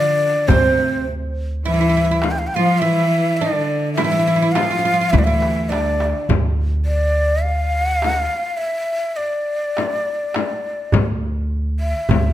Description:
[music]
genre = Turkish makam ensemble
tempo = 103 BPM (eighths)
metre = 10/8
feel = straight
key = D makam nihavent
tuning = A4 = 442 Hz
[part]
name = breathy ney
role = melody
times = 0.0-12.3 s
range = C5 to G5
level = -20 LUFS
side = left 1 dB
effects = none
[part]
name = oud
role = second line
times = 0.0-6.2 s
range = C4 to F4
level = -24 LUFS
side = right 6 dB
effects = none
[part]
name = rich studio cello section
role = second line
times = 0.0-6.3 s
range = C3 to F3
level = -21 LUFS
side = left 1 dB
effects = slapback echo
[part]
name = upright bass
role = bass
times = 0.0-12.3 s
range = D2 to D3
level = -20 LUFS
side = right 1 dB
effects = none
[part]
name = darbuka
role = percussion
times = 0.5-12.3 s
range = none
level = -23 LUFS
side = right 3 dB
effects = none
[part]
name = frame drum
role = percussion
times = 0.5-12.3 s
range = none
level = -23 LUFS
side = left 7 dB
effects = none
[sound]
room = moderate recital hall reverb, RT60 1.5 s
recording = close, detailed microphones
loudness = -16 LUFS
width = side -12 dB against mid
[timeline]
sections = 0.0-6.3 A section; 6.3-12.3 B section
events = drum fill 5.1-6.3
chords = none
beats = | 0.49 1.07 1.65 2.23 2.81 3.39 3.97 4.55 5.13 5.71 | 6.30 6.88 7.46 8.04 8.62 9.20 9.78 10.36 10.94 11.52 | 12.10

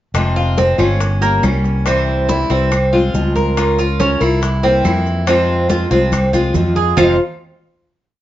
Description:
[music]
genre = latin, Cuban son and guajira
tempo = 141 BPM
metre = 4/4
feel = straight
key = F harmonic minor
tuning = A4 = 440 Hz
[part]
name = picked old ladder-braced acoustic guitar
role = accompaniment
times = 0.1-7.2 s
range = F2 to Bb4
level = -19 LUFS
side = left 3 dB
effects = none
[part]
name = fretless electric bass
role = bass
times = 0.1-7.2 s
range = F1 to F2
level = -17 LUFS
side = equal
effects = none
[part]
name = bongos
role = percussion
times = 0.1-7.1 s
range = none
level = -28 LUFS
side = left 4 dB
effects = none
[part]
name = maracas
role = percussion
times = 0.1-7.1 s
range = none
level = -36 LUFS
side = right 6 dB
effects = none
[part]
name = claves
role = percussion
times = 0.2-7.1 s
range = none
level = -28 LUFS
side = right 2 dB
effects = none
[part]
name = congas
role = percussion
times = 0.2-7.1 s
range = none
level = -23 LUFS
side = equal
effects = none
[part]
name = Cuban tres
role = arpeggios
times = 0.4-7.2 s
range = Bb3 to F5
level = -17 LUFS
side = right 2 dB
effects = none
[sound]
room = light reverb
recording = nothing above 7.5 kHz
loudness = -13 LUFS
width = side -13 dB against mid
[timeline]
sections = 0.1-7.0 A section; 7.0-8.2 final chord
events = drum fill 6.1-7.0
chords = 0.1 Fm; 1.0 Gdim; 1.9 C; 2.7 Fm/C; 3.6 Bbm/Db; 4.4 C7; 5.3 Fm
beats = | 0.15 0.58 1.01 1.43 | 1.86 2.29 2.72 3.14 | 3.57 4.00 4.42 4.85 | 5.28 5.70 6.13 6.55 | 6.98

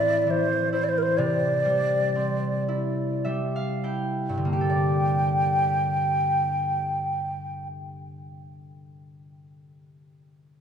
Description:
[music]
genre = celtic folk, Celtic slow air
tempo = 30-47 BPM (dotted quarters)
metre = 6/8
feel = rubato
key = G dorian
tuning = A4 = 439 Hz
[part]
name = breathy mellow wooden flute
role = melody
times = 0.0-7.7 s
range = Bb4 to G5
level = -24 LUFS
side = right 1 dB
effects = none
[part]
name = concert harp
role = accompaniment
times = 0.0-8.3 s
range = G2 to G5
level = -27 LUFS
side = equal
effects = none
[sound]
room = wet church reverb, RT60 2.9 s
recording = minimal, uncompressed stereo recording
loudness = -22 LUFS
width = side -8 dB against mid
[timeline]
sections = 0.0-4.5 A section; 4.5-8.3 B section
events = slowing down 0.0-4.5; harp fill 2.7-4.5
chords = 0.0 Am; 1.2 Cadd9; 4.5 Gmadd9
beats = | 1.16 2.67 | 4.49 6.42

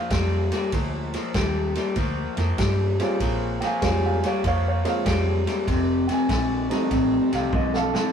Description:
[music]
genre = electric blues shuffle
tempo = 97 BPM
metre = 4/4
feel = swing 67% on 8ths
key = unclear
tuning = A4 = 438 Hz
[part]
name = warm upright piano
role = accompaniment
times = 0.0-8.1 s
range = G3 to Ab5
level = -27 LUFS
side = right 3 dB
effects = none
[part]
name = electric guitar through a small old amp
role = riff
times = 0.0-8.1 s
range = F2 to G3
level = -24 LUFS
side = left 2 dB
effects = none
[part]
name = vintage muted fingered electric bass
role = bass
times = 0.1-7.9 s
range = F1 to G2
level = -27 LUFS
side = equal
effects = none
[part]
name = vintage drum kit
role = drums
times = 0.1-8.1 s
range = kick drum, ride cymbal, snare drum, toms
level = -28 LUFS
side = equal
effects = none
[sound]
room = moderate stone room reverb, RT60 1.0 s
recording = rough rehearsal-room recording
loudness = -21 LUFS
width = side -7 dB against mid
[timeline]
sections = 0.0-8.1 A section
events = drum fill 7.5-8.1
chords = 0.0 Bb; 3.2 Bbm7; 5.7 F7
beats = 0.11 | 0.73 1.35 1.97 2.59 | 3.21 3.83 4.44 5.06 | 5.68 6.30 6.92 7.53

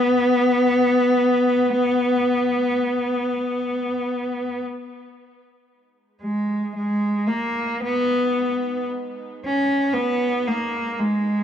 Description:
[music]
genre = ambient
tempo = 56 BPM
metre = 4/4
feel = straight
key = G# minor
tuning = A4 = 440 Hz
[part]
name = rich cello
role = melody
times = 0.0-11.4 s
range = G#3 to C#4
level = -19 LUFS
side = equal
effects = cassette tape, tape echo
[part]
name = bowed-like drone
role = drone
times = 7.4-11.4 s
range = G#3 to D#4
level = -43 LUFS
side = equal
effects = none
[sound]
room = wet studio reverb, RT60 0.5 s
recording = home recording on cassette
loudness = -19 LUFS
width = side -9 dB against mid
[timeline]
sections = 0.0-5.7 A section; 5.7-11.4 B section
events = none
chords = 0.0 N.C.; 5.7 G#m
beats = 0.33 | 1.40 2.48 3.55 4.62 | 5.69 6.76 7.83 8.90 | 9.97 11.05

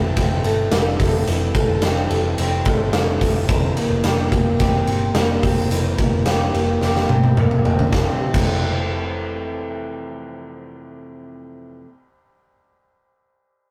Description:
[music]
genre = jangly indie pop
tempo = 108 BPM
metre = 4/4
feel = straight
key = F major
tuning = A4 = 440 Hz
[part]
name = picked twelve-string acoustic guitar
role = accompaniment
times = 0.0-11.9 s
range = F2 to A4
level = -30 LUFS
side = equal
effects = none
[part]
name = electric guitar through a small old amp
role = arpeggios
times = 0.0-11.9 s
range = E3 to G4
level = -27 LUFS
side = equal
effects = none
[part]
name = vintage muted picked electric bass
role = bass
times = 0.0-11.6 s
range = F1 to G1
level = -25 LUFS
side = equal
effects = none
[part]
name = big rock drum kit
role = drums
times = 0.2-8.5 s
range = crash cymbal, hi-hat, kick drum, ride cymbal, snare drum, toms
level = -22 LUFS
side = equal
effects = none
[sound]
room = moderate small room ambience, RT60 0.5 s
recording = rough rehearsal-room recording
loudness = -19 LUFS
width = mono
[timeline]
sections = 0.0-7.9 A section; 7.9-10.1 B section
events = drum fill 6.8-7.9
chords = 0.0 Fmaj7; 3.5 C7/F; 7.9 Fmaj7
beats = 0.17 0.72 | 1.28 1.83 2.38 2.94 | 3.49 4.04 4.60 5.15 | 5.71 6.26 6.81 7.37 | 7.92 8.48 9.03 9.59

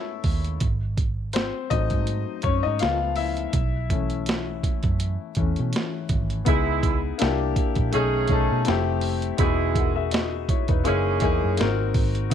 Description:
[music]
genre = R&B, neo-soul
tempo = 82 BPM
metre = 4/4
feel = swing 54% on 16ths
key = C# dorian from 6.5 s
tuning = A4 = 439 Hz
[part]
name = warm baby grand piano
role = accompaniment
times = 0.0-12.3 s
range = E3 to F#5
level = -26 LUFS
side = left 11 dB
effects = none
[part]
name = boom bap sampler-style drum kit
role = drums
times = 0.2-12.3 s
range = hi-hat, kick drum, snare drum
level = -25 LUFS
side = right 2 dB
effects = none
[part]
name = vintage muted picked electric bass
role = bass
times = 0.3-12.3 s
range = E1 to B2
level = -26 LUFS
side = right 2 dB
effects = none
[part]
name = mellow horn section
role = stabs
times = 6.5-11.5 s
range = A#2 to G#4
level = -27 LUFS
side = right 16 dB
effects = none
[sound]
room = digital ambience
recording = 1960s-style stereo with parts hard left and right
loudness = -21 LUFS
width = side -9 dB against mid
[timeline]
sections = 0.0-6.5 A section; 6.5-12.3 B section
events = grand piano solo 0.0-6.5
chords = 0.0 F#m9 (rootless); 0.6 G#7b9; 2.8 C#7b13; 3.5 B7sus4; 6.5 C#m9; 7.2 C9; 7.9 B13; 8.7 Fmaj9; 9.4 Emaj9; 10.9 F#13; 11.6 G#7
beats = | 0.61 1.34 2.07 2.81 | 3.54 4.27 5.00 5.73 | 6.46 7.20 7.93 8.66 | 9.39 10.12 10.85 11.59 | 12.32

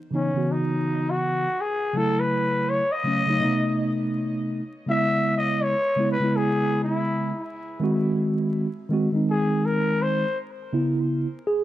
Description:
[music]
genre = hip hop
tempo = 82 BPM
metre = 4/4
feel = swing 63% on 16ths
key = unclear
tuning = A4 = 440 Hz
[part]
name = growling trumpet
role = melody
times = 0.1-10.4 s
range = C#4 to E5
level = -25 LUFS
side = left 2 dB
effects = tape echo
[part]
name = mellow tine electric piano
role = accompaniment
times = 0.1-11.6 s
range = C3 to G#4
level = -23 LUFS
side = right 1 dB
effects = medium stereo tremolo
[sound]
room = light reverb, studio reverb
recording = dry, close 1970s-style studio recording, vinyl crackle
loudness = -22 LUFS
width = side -14 dB against mid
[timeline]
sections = 0.0-10.7 A section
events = trumpet solo 0.0-10.7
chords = 0.0 C#m9; 2.0 F#m7; 3.4 B7b9; 4.9 E6; 7.8 G#7; 10.7 C#m7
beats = 0.50 1.23 | 1.96 2.69 3.42 4.16 | 4.89 5.62 6.35 7.08 | 7.82 8.55 9.28 10.01 | 10.74 11.47

